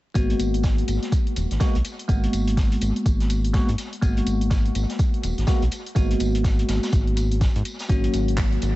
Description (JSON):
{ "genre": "deep house", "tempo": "124 BPM", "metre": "4/4", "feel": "swing 60% on 16ths", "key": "G# minor", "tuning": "A4 = 441 Hz", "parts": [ { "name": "bell-like tine electric piano", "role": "stabs", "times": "0.1-8.8 s", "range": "F#3 to F#4", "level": "-26 LUFS", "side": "left 1 dB", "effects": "phaser, sidechain pumping, analog delay" }, { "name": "round analog bass", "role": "bass", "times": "0.2-8.7 s", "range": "D#1 to G#2", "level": "-24 LUFS", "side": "equal", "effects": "none" }, { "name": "deep house drum kit", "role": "drums", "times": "0.2-8.7 s", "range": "handclaps, hi-hat", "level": "-36 LUFS", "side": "left 1 dB", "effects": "overdrive" }, { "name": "electronic kick drum", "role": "drums", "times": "0.2-8.5 s", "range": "none", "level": "-21 LUFS", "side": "equal", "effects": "overdrive" }, { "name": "vintage drum kit", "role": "drums", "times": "0.2-8.8 s", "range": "hi-hat, snare drum, tambourine", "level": "-38 LUFS", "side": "equal", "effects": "high-pass filter on hats, high-pass filter on snare, high-pass filter on perc, high-pass filter on room, analog delay" } ], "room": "small room reverb", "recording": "echo-heavy mix, vinyl crackle, nothing above 8.0 kHz", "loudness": "-20 LUFS", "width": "side -18 dB against mid", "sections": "0.2-8.8 A section", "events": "none", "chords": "0.2 G#m9; 7.9 F#" }